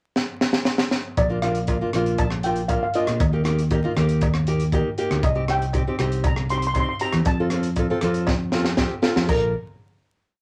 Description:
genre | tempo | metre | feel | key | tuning
calypso | 118 BPM | 4/4 | straight | Bb major | A4 = 440 Hz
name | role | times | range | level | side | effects
crisp fusion drum kit | drums | 0.2-9.4 s | crash cymbal, hi-hat, kick drum, rim click, snare drum | -27 LUFS | equal | none
steel pan | melody | 1.2-9.5 s | D5 to C6 | -28 LUFS | equal | none
fingered electric bass | bass | 1.2-9.5 s | Bb1 to Bb2 | -26 LUFS | equal | none
cowbell | percussion | 1.2-9.5 s | none | -35 LUFS | equal | none
nylon-string guitar | accompaniment | 1.3-9.5 s | Bb3 to Bb4 | -28 LUFS | equal | none
room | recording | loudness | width
moderate small room ambience, RT60 0.5 s | vinyl crackle | -22 LUFS | mono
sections
0.0-1.2 pickup bar; 1.2-9.3 verse; 9.3-10.4 final chord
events
drum fill 0.2-1.2, 8.3-9.3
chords
0.0 N.C.; 1.2 Bb; 3.2 Eb; 5.2 Cm; 7.3 F; 9.3 Bb

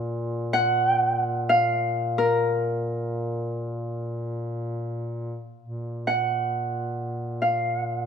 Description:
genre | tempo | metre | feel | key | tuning
caucasian folk, Caucasian lament | free time | none | none | unclear | A4 = 441 Hz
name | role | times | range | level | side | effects
warm duduk | drone | 0.0-8.1 s | Bb2 | -30 LUFS | equal | none
Celtic harp | melody | 0.5-8.1 s | Bb4 to Gb5 | -23 LUFS | equal | none
room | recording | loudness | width
moderate recital hall reverb, RT60 1.4 s | minimal, uncompressed stereo recording | -23 LUFS | side -7 dB against mid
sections
0.0-5.6 A section; 5.6-8.1 A section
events
none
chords
none

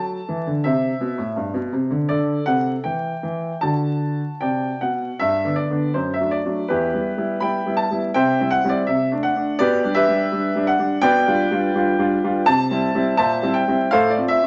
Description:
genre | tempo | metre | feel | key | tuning
classical-period piano sonatina | 82 BPM | 2/4 | rubato | G major, C major from 11.0 s | A4 = 442 Hz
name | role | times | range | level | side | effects
warm baby grand piano | solo | 0.0-14.5 s | E2 to B5 | -20 LUFS | equal | none
room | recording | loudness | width
moderate stone room reverb, RT60 1.0 s | vinyl crackle, nothing above 7.8 kHz | -21 LUFS | mono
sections
0.0-5.2 A section; 5.2-14.5 B section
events
none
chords
0.0 D; 0.6 C; 2.1 D; 2.9 N.C.; 3.6 D; 5.2 G; 6.0 D/F#; 6.7 Em; 8.2 C; 8.9 D7/C; 9.6 G/B; 11.0 G7/B; 12.5 C; 13.2 C7/Bb; 13.9 F/A

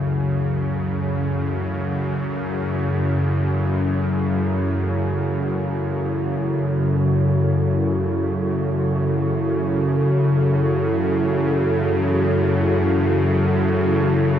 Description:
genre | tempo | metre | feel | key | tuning
dark ambient drone | free time | none | none | F# minor | A4 = 444 Hz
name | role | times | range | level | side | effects
dark analog pad | sustained chords | 0.0-14.4 s | E4 to A4 | -24 LUFS | right 1 dB | chorus
gamelan-type bossed gongs | arpeggios | 0.0-14.4 s | C#2 to E3 | -40 LUFS | left 1 dB | none
bowed-like drone | drone | 0.0-14.4 s | F#2 to C#3 | -20 LUFS | left 1 dB | built-in reverb
wind-like tuned noise texture | texture | 0.0-14.4 s | C#5 | -38 LUFS | right 2 dB | none
room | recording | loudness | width
wet huge ambient reverb, RT60 8.6 s | dark, warm production | -18 LUFS | side -10 dB against mid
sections
0.0-14.4 A section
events
none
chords
0.0 F#m

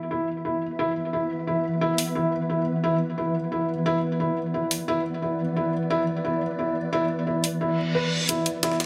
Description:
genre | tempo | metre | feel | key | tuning
dark technical drum and bass | 176 BPM | 4/4 | straight | unclear | A4 = 439 Hz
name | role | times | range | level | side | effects
swarming drone | sustained chords | 0.0-8.9 s | E3 to E5 | -30 LUFS | equal | built-in reverb
felt-muted upright piano | arpeggios | 0.1-8.7 s | E4 to B4 | -28 LUFS | equal | low-pass filter, delay
electronic hi-hat | drums | 2.0-2.1, 4.7-4.8, 7.4-8.9 s | none | -28 LUFS | equal | none
reverse cymbal | sound effects | 7.7-8.3 s | none | -32 LUFS | equal | none
jungle sampler-style drum kit | drums | 8.3-8.8 s | ride cymbal, snare drum | -34 LUFS | equal | high-pass filter on cymbals, high-pass filter on snare
room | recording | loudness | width
moderate digital room reverb, RT60 1.2 s, digital ambience | none | -26 LUFS | mono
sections
0.0-8.3 A section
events
filter sweep on synth drone 0.0-8.3; reverse cymbal 7.7-8.3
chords
0.0 E5

